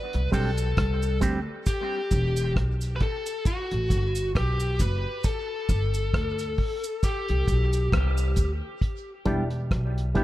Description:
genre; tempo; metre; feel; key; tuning
dub reggae; 67 BPM; 4/4; swing 57% on 16ths; E minor; A4 = 441 Hz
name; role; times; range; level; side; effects
biting lead guitar; melody; 0.0-7.9 s; F#4 to B4; -30 LUFS; left 2 dB; overdrive, dub echo
upright bass; bass; 0.1-10.1 s; E1 to D2; -26 LUFS; equal; none
cloth-damped thuddy drum kit; drums; 0.1-10.2 s; hi-hat, kick drum, rim click; -26 LUFS; equal; none
electric guitar with an envelope filter; accompaniment; 0.3-1.4, 9.3-10.2 s; G3 to G4; -32 LUFS; right 3 dB; dub echo
cabasa; percussion; 0.3-8.6 s; none; -42 LUFS; right 4 dB; dub echo
percussive organ stab; stabs; 9.3-10.2 s; D4 to G4; -32 LUFS; left 2 dB; chorus, dub echo
room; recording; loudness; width
light reverb; dark, warm production; -24 LUFS; side -15 dB against mid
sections
0.0-8.8 A section; 8.8-10.2 B section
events
break 0.0-8.8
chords
0.0 D7sus4; 1.7 Em; 3.5 F#madd11; 5.2 G5; 7.0 D7sus4; 8.8 Em7

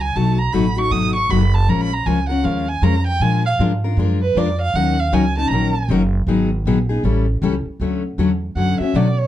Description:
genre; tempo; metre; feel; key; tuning
acoustic string swing (jazz manouche); 157 BPM; 4/4; swing 62% on 8ths; unclear; A4 = 440 Hz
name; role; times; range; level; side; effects
dark violin; melody; 0.0-5.9, 8.6-9.3 s; B4 to D#6; -22 LUFS; right 4 dB; none
upright bass; bass; 0.0-9.3 s; F#1 to B2; -19 LUFS; right 1 dB; none
picked steel-string acoustic guitar; accompaniment; 0.2-9.1 s; B2 to A#4; -19 LUFS; left 4 dB; none
room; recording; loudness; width
moderate club reverb, RT60 0.6 s; dark, warm production; -16 LUFS; side -12 dB against mid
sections
0.0-7.8 A section; 7.8-9.3 A section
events
violin solo 0.0-7.8, 7.8-9.3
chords
0.2 B6; 1.7 A#m7; 3.2 A#7; 4.7 D#m7; 6.3 G#m7; 7.0 A7; 7.8 Dmaj9

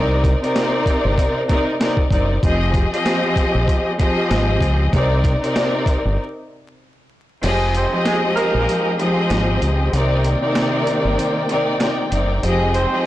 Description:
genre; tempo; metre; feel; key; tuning
hip hop, boom-bap hip-hop; 96 BPM; 4/4; swing 57% on 16ths; F minor; A4 = 440 Hz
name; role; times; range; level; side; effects
clear studio string section; accompaniment; 0.0-13.1 s; C3 to Eb5; -19 LUFS; left 1 dB; high-pass filter, low-pass filter
deep dub fingered electric bass; bass; 0.0-12.8 s; F1 to Db2; -19 LUFS; equal; transformer saturation
boom bap sampler-style drum kit; drums; 0.2-12.9 s; crash cymbal, hi-hat, kick drum, snare drum; -21 LUFS; equal; vintage 12-bit sampler grit
dark studio string section; sustained chords; 7.4-13.1 s; Eb3 to G5; -26 LUFS; equal; high-pass filter, low-pass filter
clear saxophone section; stabs; 7.8-8.9, 12.7-13.0 s; Ab3 to C5; -21 LUFS; right 2 dB; high-pass filter, low-pass filter, digital delay
finger snap; percussion; 8.1-12.0 s; none; -35 LUFS; right 6 dB; none
room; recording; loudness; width
light reverb; blown-out, overdriven recording, vinyl crackle, overdrive; -16 LUFS; side -14 dB against mid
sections
0.0-7.4 A section; 7.4-13.1 B section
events
break 6.2-7.4; kick muted 7.4-13.1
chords
0.0 Cm9; 2.4 Fm9; 4.9 Cm9; 7.4 Fm9; 9.9 Cm9; 12.4 Fm9

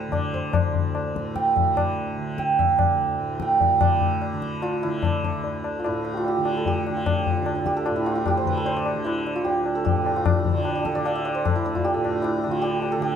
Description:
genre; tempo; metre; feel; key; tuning
indian classical, Hindustani; 149 BPM; 4/4; straight; D raga bhimpalasi; A4 = 440 Hz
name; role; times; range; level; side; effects
santur; melody; 0.0-13.2 s; D4 to G5; -24 LUFS; right 3 dB; none
tanpura; drone; 0.0-13.2 s; D2 to D3; -30 LUFS; right 1 dB; none
tabla; percussion; 0.1-13.2 s; none; -26 LUFS; left 7 dB; none
room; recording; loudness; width
moderate large studio reverb, RT60 1.2 s; band playing live in one room; -21 LUFS; side -7 dB against mid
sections
0.0-3.8 A section; 3.8-13.2 B section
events
speeding up 0.0-13.2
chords
none

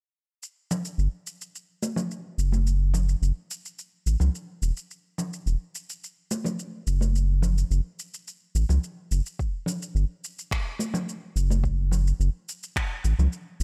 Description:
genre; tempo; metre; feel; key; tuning
sunset chillout; 107 BPM; 4/4; straight; E dorian; A4 = 440 Hz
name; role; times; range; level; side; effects
electronic shaker and finger snaps; drums; 0.4-13.6 s; none; -38 LUFS; equal; none
congas; percussion; 0.7-13.3 s; none; -34 LUFS; equal; none
round analog bass; bass; 1.0-13.6 s; E1 to C#2; -24 LUFS; equal; none
electronic kick drum; drums; 9.4-12.9 s; none; -32 LUFS; equal; none
room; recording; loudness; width
digital ambience; none; -27 LUFS; mono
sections
0.4-13.6 A section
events
filter sweep on analog synth bass 0.4-13.6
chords
none

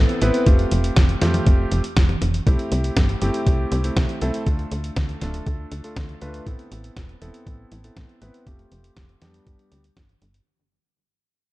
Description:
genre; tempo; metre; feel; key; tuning
italo disco; 120 BPM; 4/4; straight; C major; A4 = 440 Hz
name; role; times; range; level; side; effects
clear electric grand piano; stabs; 0.0-9.8 s; G3 to B4; -26 LUFS; equal; low-pass filter, digital delay
tight sequencer bass; bass; 0.0-10.4 s; D1 to F2; -24 LUFS; equal; none
dusty soul sampler-style drum kit; drums; 0.1-10.4 s; hi-hat, snare drum, toms; -26 LUFS; equal; none
electronic kick drum; drums; 0.5-10.1 s; none; -18 LUFS; equal; none
room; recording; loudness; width
light reverb, digital ambience; dark, warm production; -18 LUFS; side -19 dB against mid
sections
0.0-10.5 A section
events
fade-out 0.0-10.5; filter sweep on electric grand piano 0.0-10.5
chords
0.5 Fadd9; 2.5 C6; 4.5 Dm; 6.5 Amadd9; 8.5 Fadd9; 9.5 G

